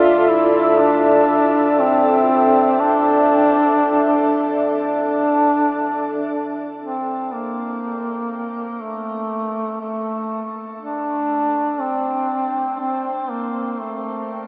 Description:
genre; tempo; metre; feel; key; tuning
dark ambient drone; 60 BPM; 4/4; straight; unclear; A4 = 440 Hz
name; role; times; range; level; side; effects
mellow duduk; melody; 0.0-14.5 s; A3 to F4; -18 LUFS; equal; shimmer reverb, tape echo
deep dark ambient pad; sustained chords; 0.0-6.8 s; D4 to E5; -18 LUFS; equal; chorus, built-in reverb, shimmer reverb
room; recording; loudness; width
wet huge ambient reverb, RT60 7.9 s; AM radio sound; -16 LUFS; side -26 dB against mid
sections
0.0-6.8 A section; 6.8-14.5 B section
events
none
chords
0.0 D5; 6.8 N.C.

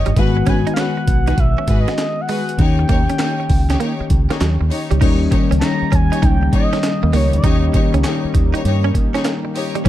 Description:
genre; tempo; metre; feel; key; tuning
R&B, new jack swing; 99 BPM; 4/4; swing 66% on 16ths; unclear; A4 = 440 Hz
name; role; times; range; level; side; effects
expressive synth lead; melody; 0.0-7.9 s; C#5 to A#5; -25 LUFS; right 1 dB; chorus, tape echo
tine electric piano; accompaniment; 0.0-9.9 s; D#3 to G4; -21 LUFS; left 5 dB; none
clear studio string section; stabs; 0.0-9.9 s; D#4 to C#5; -26 LUFS; left 3 dB; none
deep dub fingered electric bass; bass; 0.0-9.9 s; G1 to G#2; -17 LUFS; equal; none
direct-recorded clean electric guitar; riff; 0.1-9.9 s; F#3 to D#4; -26 LUFS; right 6 dB; analog chorus
breakbeat sampler-style drum kit; drums; 0.1-9.9 s; crash cymbal, handclaps, hi-hat, kick drum, snare drum; -18 LUFS; equal; none
chorused pulse-width pad; sustained chords; 5.0-9.9 s; D#3 to E4; -27 LUFS; equal; none
room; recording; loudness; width
little or no reverb; dark, warm production; -14 LUFS; side -13 dB against mid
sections
0.0-5.0 A section; 5.0-9.9 B section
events
none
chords
0.2 G#m7; 2.6 D#7

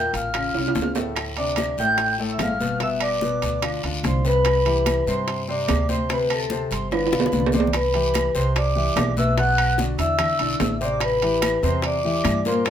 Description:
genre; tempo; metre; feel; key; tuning
Afro-Cuban jazz; 146 BPM; 4/4; straight; C major; A4 = 440 Hz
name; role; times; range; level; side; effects
vibraphone with medium mallets; melody; 0.0-12.7 s; A4 to G5; -24 LUFS; left 2 dB; none
concert flute; second line; 0.0-12.7 s; A5 to G6; -28 LUFS; right 3 dB; none
warm grand piano; accompaniment; 0.0-12.7 s; A2 to C5; -27 LUFS; left 3 dB; none
upright bass; bass; 0.0-12.7 s; G1 to G2; -26 LUFS; right 1 dB; none
bongos; percussion; 0.1-12.7 s; none; -31 LUFS; left 5 dB; none
guiro; percussion; 0.1-12.7 s; none; -35 LUFS; left 4 dB; none
timbales; percussion; 0.1-12.7 s; none; -28 LUFS; right 7 dB; none
claves; percussion; 0.3-12.4 s; none; -36 LUFS; right 4 dB; none
congas; percussion; 0.3-12.7 s; none; -29 LUFS; left 2 dB; none
room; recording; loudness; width
moderate studio reverb, RT60 0.8 s; minimal, uncompressed stereo recording; -19 LUFS; side -9 dB against mid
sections
0.0-7.7 A section; 7.7-12.7 B section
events
drum fill 0.5-1.2, 6.9-7.7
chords
0.3 Aaug; 1.2 Dm7; 2.8 G7; 4.5 Cmaj9; 6.1 D5; 6.9 G7; 7.7 Cmaj9; 9.4 Bm; 10.2 E5; 11.0 Am9

